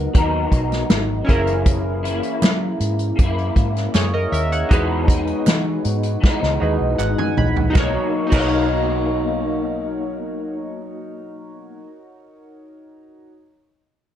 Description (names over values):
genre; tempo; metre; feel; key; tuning
indie pop, bedroom pop; 79 BPM; 4/4; straight; B major; A4 = 440 Hz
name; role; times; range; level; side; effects
chorused retro synth keys; accompaniment; 0.0-13.3 s; B3 to B5; -26 LUFS; right 2 dB; cassette tape, plate reverb
electric guitar through a small old amp; accompaniment; 0.0-11.9 s; F#2 to A#4; -23 LUFS; left 2 dB; ensemble chorus, warbly pitch drift
vintage muted fingered electric bass; bass; 0.0-11.8 s; F#1 to F#3; -23 LUFS; equal; none
unplugged drum kit; drums; 0.1-8.5 s; crash cymbal, hi-hat, kick drum, snare drum, toms; -19 LUFS; equal; none
group handclap; percussion; 0.9-8.5 s; none; -34 LUFS; right 16 dB; none
room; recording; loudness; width
light reverb; dark, warm production; -17 LUFS; side -10 dB against mid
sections
0.0-7.8 A section; 7.8-10.8 B section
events
drum fill 6.2-7.8; synth keys fill 6.6-7.8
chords
0.0 G#m9; 1.3 F#7; 4.7 Emaj7; 7.8 Bmaj7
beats
0.14 0.91 | 1.67 2.43 3.19 3.95 | 4.71 5.47 6.23 6.99 | 7.75 8.51 9.27 10.03